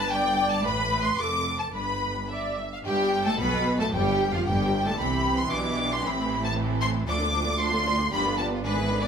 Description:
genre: quick classical-period movement for string orchestra.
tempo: 113 BPM.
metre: 2/4.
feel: rubato.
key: unclear.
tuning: A4 = 440 Hz.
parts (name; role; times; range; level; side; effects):
clear symphonic violin section; melody; 0.0-9.1 s; B4 to D6; -27 LUFS; left 2 dB; none.
rich studio violin section; second line; 0.0-9.1 s; D4 to D6; -33 LUFS; equal; none.
rich symphonic viola section; accompaniment; 0.0-9.1 s; D3 to E5; -30 LUFS; right 1 dB; none.
rich symphonic cello section; bass; 0.0-9.1 s; D2 to C3; -32 LUFS; right 1 dB; none.
rich symphonic double bass section; bass; 0.0-9.1 s; F1 to D2; -31 LUFS; right 2 dB; none.
room: moderate large studio reverb, RT60 1.4 s.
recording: minimal, uncompressed stereo recording.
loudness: -23 LUFS.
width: side -7 dB against mid.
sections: 0.0-2.8 A section; 2.8-9.1 B section.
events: none.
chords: 0.0 G; 0.6 Amadd9; 1.2 Dm/F; 1.7 G; 2.8 Gadd9; 3.9 Fadd9/G; 5.0 C; 6.0 Am; 7.1 Dm; 8.1 G7.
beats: 0.11 | 0.65 1.18 | 1.74 2.29 | 2.85 3.38 | 3.92 4.45 | 4.98 5.50 | 6.03 6.55 | 7.07 7.59 | 8.11 8.63.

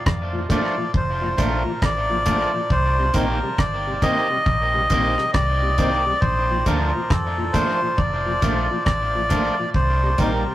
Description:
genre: roots reggae.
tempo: 68 BPM.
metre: 4/4.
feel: swing 61% on 16ths.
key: Bb major.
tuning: A4 = 439 Hz.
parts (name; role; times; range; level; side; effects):
melodica; melody; 0.0-10.5 s; A4 to Eb5; -22 LUFS; equal; tape echo.
vintage muted fingered electric bass; bass; 0.1-10.4 s; F1 to F2; -24 LUFS; equal; none.
deep reggae drum kit; drums; 0.1-10.4 s; hi-hat, kick drum, rim click; -23 LUFS; equal; tape echo.
mellow tonewheel organ; accompaniment; 0.3-10.5 s; Bb2 to Eb4; -28 LUFS; left 1 dB; slow rotary speaker.
electric guitar at the edge of break-up; accompaniment; 0.5-10.4 s; Eb3 to G4; -27 LUFS; right 1 dB; tape echo.
room: moderate small room ambience, RT60 0.5 s.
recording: rough rehearsal-room recording.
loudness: -18 LUFS.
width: side -14 dB against mid.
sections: 0.0-10.5 A section.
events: none.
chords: 0.0 Bbmaj7; 2.7 Cm7; 6.2 Bbmaj7; 9.7 Cm7.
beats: 0.06 0.94 1.82 | 2.70 3.58 4.46 5.34 | 6.22 7.10 7.98 8.87 | 9.74.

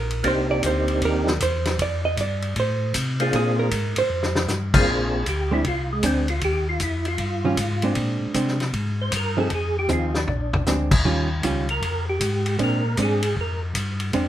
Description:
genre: soul jazz organ trio.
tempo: 156 BPM.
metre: 4/4.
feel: swing 65% on 8ths.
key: Bb mixolydian.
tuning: A4 = 439 Hz.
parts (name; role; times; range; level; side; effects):
hollow-body jazz guitar; accompaniment; 0.0-14.3 s; Eb3 to Eb5; -24 LUFS; right 3 dB; none.
mellow tonewheel organ; bass; 0.0-14.3 s; Bb1 to C3; -25 LUFS; left 1 dB; slow rotary speaker.
warm soul drum kit; drums; 0.1-14.2 s; crash cymbal, hi-hat, kick drum, ride cymbal, snare drum, toms; -26 LUFS; left 1 dB; none.
percussive tonewheel organ; melody; 0.2-13.6 s; Ab3 to C5; -25 LUFS; equal; slow rotary speaker, chorus vibrato.
room: moderate club reverb, RT60 0.7 s.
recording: minimal, uncompressed stereo recording.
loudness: -20 LUFS.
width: side -12 dB against mid.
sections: 0.0-4.9 A section; 4.9-14.3 A section.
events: hollow-body jazz guitar solo 0.0-4.9; drum fill 4.1-4.5, 9.9-10.7; tonewheel organ solo 4.9-14.3.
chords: 0.0 Cm7; 1.8 Fadd9; 3.3 Bb9; 4.1 Fsus2; 4.9 Bb9; 6.4 Ebadd9; 8.0 Bb9; 9.5 Fm7; 10.3 Bb9; 11.0 Eb9; 12.6 Bb9.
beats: | 0.24 0.63 1.01 1.40 | 1.79 2.17 2.56 2.94 | 3.33 3.71 4.10 4.49 | 4.87 5.26 5.64 6.03 | 6.42 6.80 7.19 7.57 | 7.96 8.35 8.73 9.12 | 9.50 9.89 10.28 10.66 | 11.05 11.43 11.82 12.20 | 12.59 12.97 13.36 13.74 | 14.13.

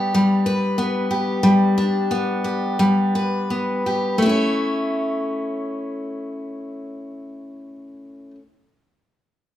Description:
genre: pop.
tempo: 82-95 BPM.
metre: 4/4.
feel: swing 55% on 16ths.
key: A mixolydian.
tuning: A4 = 440 Hz.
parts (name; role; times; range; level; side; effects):
picked steel-string acoustic guitar; accompaniment; 0.0-8.4 s; G3 to C#5; -19 LUFS; left 1 dB; none.
room: wet large studio reverb, RT60 0.8 s.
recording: band playing live in one room.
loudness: -18 LUFS.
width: side -12 dB against mid.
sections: 0.0-4.2 A section; 4.2-7.2 B section.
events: slowing down 0.0-4.2.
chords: 0.0 G; 4.2 A.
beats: 0.14 0.79 | 1.44 2.10 2.78 3.49 | 4.21 4.95 5.68 6.42.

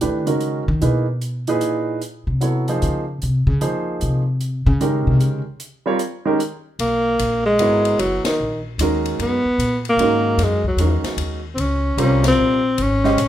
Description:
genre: modal jazz.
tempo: 150 BPM.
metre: 3/4.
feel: swing 65% on 8ths.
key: B major.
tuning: A4 = 440 Hz.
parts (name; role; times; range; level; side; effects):
clear baby grand piano; accompaniment; 0.0-13.2 s; A#2 to D#5; -21 LUFS; right 3 dB; none.
upright bass; bass; 0.0-13.3 s; F#1 to D#3; -20 LUFS; equal; none.
open jazz drum kit; drums; 0.0-13.3 s; hi-hat, kick drum, ride cymbal, snare drum; -30 LUFS; left 3 dB; none.
warm alto saxophone; melody; 6.8-13.3 s; D#3 to C#4; -18 LUFS; equal; none.
room: light reverb.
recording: minimal, uncompressed stereo recording.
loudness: -17 LUFS.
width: side -12 dB against mid.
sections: 0.0-6.8 A section; 6.8-13.3 B section.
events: upright bass solo 0.0-6.8; band accent 8.2, 12.2.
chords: 0.0 Bmaj9; 2.0 C#maj9; 6.8 Bmaj9; 11.6 C#maj7.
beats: 0.02 0.42 | 0.81 1.21 1.61 | 2.01 2.41 2.81 | 3.21 3.61 4.00 | 4.40 4.80 5.20 | 5.59 5.99 6.39 | 6.79 7.19 7.59 | 7.99 8.38 8.78 | 9.18 9.58 9.98 | 10.38 10.78 11.18 | 11.58 11.98 12.38 | 12.77 13.17.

